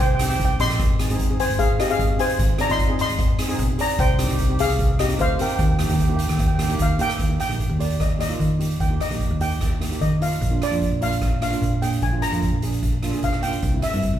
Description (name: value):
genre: calypso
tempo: 150 BPM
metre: 4/4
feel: straight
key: Eb major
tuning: A4 = 435 Hz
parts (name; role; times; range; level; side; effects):
- steel pan; melody; 0.0-14.2 s; G4 to C6; -25 LUFS; left 1 dB; none
- hollow-body short-scale fingered electric bass; bass; 0.0-14.2 s; Ab1 to Eb3; -24 LUFS; equal; none
- street-band drum kit; drums; 0.0-14.1 s; hi-hat, kick drum, rim click; -23 LUFS; equal; none
- steel pan; accompaniment; 0.2-14.1 s; G3 to Ab4; -28 LUFS; right 2 dB; none
room: moderate large studio reverb, RT60 1.2 s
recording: band playing live in one room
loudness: -19 LUFS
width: side -11 dB against mid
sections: 0.0-7.2 A section; 7.2-14.2 B section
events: none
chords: 0.0 Cm; 0.8 Ab; 4.0 Cm; 5.6 Eb; 10.4 Bb; 13.6 C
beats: 0.39 | 0.79 1.19 1.59 1.99 | 2.39 2.79 3.19 3.59 | 3.99 4.39 4.79 5.19 | 5.59 5.99 6.39 6.79 | 7.19 7.59 8.00 8.40 | 8.80 9.21 9.61 10.01 | 10.41 10.82 11.22 11.62 | 12.03 12.43 12.83 13.23 | 13.64 14.04